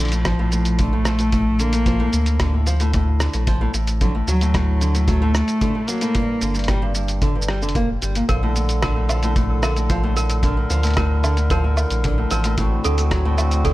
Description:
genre	folktronica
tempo	112 BPM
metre	4/4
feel	straight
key	Bb major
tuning	A4 = 439 Hz
part	rich cello	melody	0.0-6.7 s	F3 to Bb3	-23 LUFS	equal	tape echo
part	fingerpicked acoustic archtop guitar	arpeggios	0.0-13.7 s	G2 to Bb3	-26 LUFS	left 1 dB	vintage 12-bit sampler grit, tape echo
part	warm sub bass	bass	0.0-13.7 s	F1 to D2	-20 LUFS	equal	none
part	lo-fi sampler-style drum kit	drums	0.0-13.7 s	hi-hat, rim click, shaker, woodblock	-27 LUFS	equal	none
part	kick drum	drums	0.3-13.7 s	none	-24 LUFS	equal	none
part	toy piano	second line	8.3-13.7 s	A4 to Bb4	-29 LUFS	right 3 dB	tape echo
part	hand-pumped harmonium	sustained chords	8.3-13.7 s	D3 to Bb4	-27 LUFS	right 1 dB	none
room	light reverb, studio reverb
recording	none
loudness	-17 LUFS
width	side -17 dB against mid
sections	0.0-13.7 A section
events	none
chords	0.0 Bbmaj7; 4.0 D/A; 6.1 Gm; 8.3 Bbmaj7; 12.6 D7/A

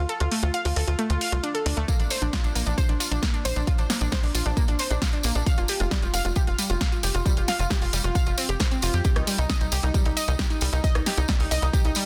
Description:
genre	uplifting trance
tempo	134 BPM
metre	4/4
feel	straight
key	Bb major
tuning	A4 = 441 Hz
part	analog pluck	arpeggios	0.0-12.0 s	G3 to F5	-31 LUFS	equal	chorus, sidechain pumping, digital delay
part	tight sequencer bass	bass	0.0-11.9 s	F1 to F2	-28 LUFS	equal	sidechain pumping
part	house drum kit	drums	0.1-12.0 s	hi-hat, rim click, snare drum	-32 LUFS	equal	studio reverb
part	electronic kick drum	drums	1.9-11.8 s	none	-26 LUFS	equal	studio reverb
part	tambourine	percussion	1.9-12.0 s	none	-36 LUFS	equal	none
room	little or no reverb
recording	dense, heavily limited modern master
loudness	-24 LUFS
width	mono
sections	0.0-12.1 A section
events	kick drops out 0.1-1.9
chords	0.0 Dm; 1.9 Bbadd9; 5.5 Fsus2; 9.0 Cm

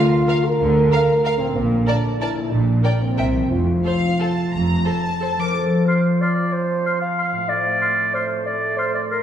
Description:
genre	classical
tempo	170-202 BPM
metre	3/4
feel	rubato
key	F major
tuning	A4 = 439 Hz
part	rich symphonic violin section	melody	0.0-5.6 s	F5 to D6	-28 LUFS	left 2 dB	none
part	rich symphonic violin section	second line	0.0-5.3 s	C5 to F5	-30 LUFS	left 1 dB	none
part	rich symphonic viola section	accompaniment	0.0-5.3 s	A4 to Bb4	-31 LUFS	right 3 dB	none
part	warm French horn section	sustained chords	0.0-9.2 s	F3 to Bb4	-24 LUFS	right 1 dB	none
part	concert harp	arpeggios	0.0-9.2 s	A2 to Bb4	-24 LUFS	left 2 dB	none
part	rich symphonic cello section	bass	0.6-4.8 s	F2 to D3	-24 LUFS	right 1 dB	none
part	rich symphonic double bass section	bass	0.6-4.8 s	F1 to D2	-22 LUFS	right 2 dB	none
part	mellow clarinet	second line	5.4-9.2 s	A4 to F5	-21 LUFS	right 1 dB	none
part	concert flute	second line	5.9-9.2 s	F6	-29 LUFS	left 3 dB	none
part	warm oboe	second line	5.9-9.2 s	C6	-30 LUFS	right 4 dB	none
room	wet scoring stage reverb, RT60 1.8 s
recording	heard from further back in the room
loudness	-17 LUFS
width	side -9 dB against mid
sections	0.0-5.6 A section; 5.6-9.2 A section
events	none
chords	0.0 Bb/D; 1.6 Bbmaj7; 2.5 Gm/Bb; 3.2 C7; 3.5 F

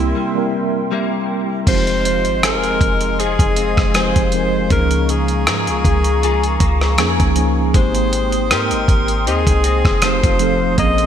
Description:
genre	contemporary R&B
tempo	79 BPM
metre	4/4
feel	swing 54% on 16ths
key	F minor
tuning	A4 = 440 Hz
part	breathy alto saxophone	melody	0.0-11.1 s	E4 to Eb5	-21 LUFS	left 1 dB	digital delay
part	mellow tine electric piano	accompaniment	0.0-11.1 s	F3 to Bb4	-21 LUFS	right 2 dB	medium stereo tremolo
part	hollow soft pad	sustained chords	0.0-11.1 s	Ab3 to Eb6	-26 LUFS	right 1 dB	chorus
part	direct-recorded clean electric guitar	arpeggios	0.0-11.1 s	C3 to Ab4	-24 LUFS	left 8 dB	ensemble chorus, digital delay
part	clean 808-style bass	bass	0.0-11.1 s	F1 to Ab2	-19 LUFS	equal	none
part	dusty soul sampler-style drum kit	drums	1.7-11.1 s	crash cymbal, hi-hat, kick drum, rim click	-18 LUFS	equal	overdrive, gated reverb
part	mallet-like synth pluck	texture	2.1-8.1 s	Bb4 to C5	-34 LUFS	right 2 dB	none
room	light reverb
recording	bright 1980s-style digital production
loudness	-14 LUFS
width	side -9 dB against mid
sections	0.0-1.7 A section; 1.7-11.1 B section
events	break 0.2-1.7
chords	0.0 C7; 1.7 Fm7; 4.7 Db6; 7.7 Abmaj7; 10.0 F7

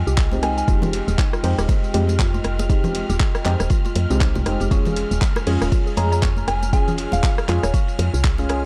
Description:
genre	deep house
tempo	119 BPM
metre	4/4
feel	swing 58% on 16ths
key	F minor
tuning	A4 = 440 Hz
part	warbly tape-like pad	sustained chords	0.0-8.7 s	Ab3 to Ab5	-36 LUFS	equal	chorus, built-in reverb, sidechain pumping
part	woody FM bass	bass	0.0-8.7 s	Eb1 to F2	-24 LUFS	equal	tube saturation, sidechain pumping
part	soft string machine	texture	0.0-8.7 s	F6	-39 LUFS	equal	phaser, ensemble chorus, sidechain pumping
part	mallet-like synth pluck	arpeggios	0.1-8.5 s	Eb4 to Db6	-37 LUFS	equal	chorus, sidechain pumping, analog delay
part	deep house drum kit	drums	0.1-8.6 s	handclaps, hi-hat, rim click, tambourine	-31 LUFS	equal	overdrive, vintage 12-bit sampler grit
part	crunchy breakbeat drum kit	drums	0.2-8.6 s	hi-hat, ride cymbal, snare drum	-40 LUFS	equal	sidechain pumping on cymbals, high-pass filter on cymbals, vintage 12-bit sampler grit, sidechain pumping on hats, high-pass filter on hats, high-pass filter on snare, high-pass filter on room
part	electronic kick drum	drums	0.2-8.4 s	none	-22 LUFS	equal	overdrive, vintage 12-bit sampler grit
part	deep mellow chord stab	stabs	0.3-8.7 s	Ab3 to Ab4	-28 LUFS	equal	chorus, sidechain pumping, analog delay
part	congas	percussion	0.3-8.5 s	none	-32 LUFS	equal	none
part	soft synth bell	melody	0.4-0.6, 6.0-7.6 s	F5 to Bb5	-30 LUFS	equal	chorus, tape echo
room	little or no reverb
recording	dry, gritty hardware recording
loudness	-20 LUFS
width	mono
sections	0.0-8.7 A section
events	none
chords	0.0 Fm9; 4.7 Db

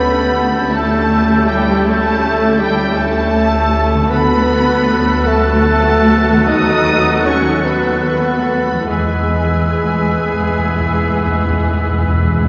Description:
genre	classical, slow romantic movement for symphony orchestra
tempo	47-54 BPM (dotted quarters)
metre	12/8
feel	rubato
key	unclear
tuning	A4 = 442 Hz
part	muted studio violin section	melody	0.0-12.5 s	G5 to D#6	-24 LUFS	equal	none
part	mellow clarinet	second line	0.0-12.5 s	G4 to D#5	-26 LUFS	equal	none
part	mellow flute section	second line	0.0-12.5 s	E6 to G6	-26 LUFS	equal	none
part	muted studio violin section	second line	0.0-12.5 s	B3 to G#4	-27 LUFS	equal	none
part	warm oboe	second line	0.0-12.5 s	A4 to B4	-25 LUFS	equal	none
part	muted studio viola section	accompaniment	0.0-12.5 s	E3 to A3	-24 LUFS	equal	none
part	mellow French horn section	sustained chords	0.0-12.5 s	G3 to D#4	-22 LUFS	equal	none
part	concert harp	arpeggios	0.0-12.5 s	D3 to B4	-27 LUFS	equal	none
part	muted studio cello section	bass	0.0-12.5 s	G3 to D#4	-23 LUFS	equal	none
part	muted studio double bass section	bass	0.0-12.5 s	D2 to E2	-23 LUFS	equal	none
part	timpani	percussion	8.9-12.5 s	E2	-23 LUFS	equal	none
room	wet church reverb, RT60 2.7 s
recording	recorded in a church or concert hall, nothing above 7.6 kHz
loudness	-14 LUFS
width	mono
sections	0.0-12.5 A section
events	timpani fill 8.9-12.5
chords	0.0 A7/D; 4.1 Bm7/D; 6.5 B7/D#; 8.9 E

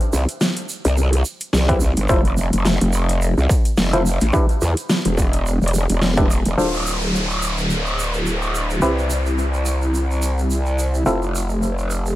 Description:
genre	glitch hop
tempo	107 BPM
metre	4/4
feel	swing 56% on 16ths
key	D dorian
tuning	A4 = 444 Hz
part	dubstep drum kit	drums	0.0-6.6 s	hi-hat, snare drum	-22 LUFS	equal	none
part	egg shaker	percussion	0.0-12.2 s	none	-32 LUFS	right 5 dB	none
part	growl bass	bass	0.1-12.2 s	D1 to E2	-18 LUFS	equal	chorus
part	muted clav	stabs	1.7-12.2 s	C4 to C5	-24 LUFS	equal	vintage 12-bit sampler grit, sidechain pumping, low-pass filter, tape echo
part	electronic kick drum	drums	1.7-6.3 s	none	-18 LUFS	equal	distortion
part	downlifter	sound effects	6.6-11.1 s	none	-27 LUFS	equal	none
room	little or no reverb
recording	vinyl crackle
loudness	-17 LUFS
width	side -15 dB against mid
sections	0.0-6.6 A section; 6.6-12.2 B section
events	band accent 6.0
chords	0.0 N.C.; 2.1 F; 4.3 N.C.; 6.6 Dm7; 8.8 Cmaj7; 11.1 Fmaj7

